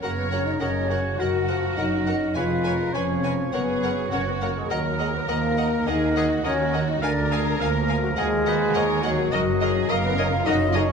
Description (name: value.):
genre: quick classical-period movement for symphony orchestra.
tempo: 104 BPM.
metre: 4/4.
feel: rubato.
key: F# major.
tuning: A4 = 440 Hz.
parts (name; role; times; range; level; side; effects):
warm symphonic violin section; melody; 0.0-10.8 s; Eb5 to G#5; -35 LUFS; left 3 dB; none.
clear oboe; second line; 0.0-10.9 s; G#4 to F5; -31 LUFS; right 2 dB; none.
concert flute; second line; 0.0-10.8 s; F#4 to F#5; -31 LUFS; equal; none.
rich studio violin section; second line; 0.0-10.8 s; F#4 to C#5; -32 LUFS; left 2 dB; none.
mellow bassoon; accompaniment; 0.0-10.9 s; C#3 to G#3; -34 LUFS; equal; none.
rich studio viola section; accompaniment; 0.0-10.8 s; F#4 to E#5; -32 LUFS; equal; none.
clear French horn section; sustained chords; 0.0-10.9 s; F#3 to F#4; -25 LUFS; left 3 dB; none.
warm chamber cello section; bass; 0.0-10.9 s; D2 to F#2; -29 LUFS; right 3 dB; none.
warm chamber double bass section; bass; 0.0-10.9 s; E#1 to D#2; -30 LUFS; right 5 dB; none.
room: wet recital hall reverb, RT60 1.5 s.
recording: none.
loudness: -21 LUFS.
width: side -6 dB against mid.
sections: 0.0-10.9 A section.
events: none.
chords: 0.0 F#; 2.4 C#7/E#; 3.5 F#; 4.7 D#m; 7.0 A#7/D; 8.2 D#m; 9.3 Ebm/Gb.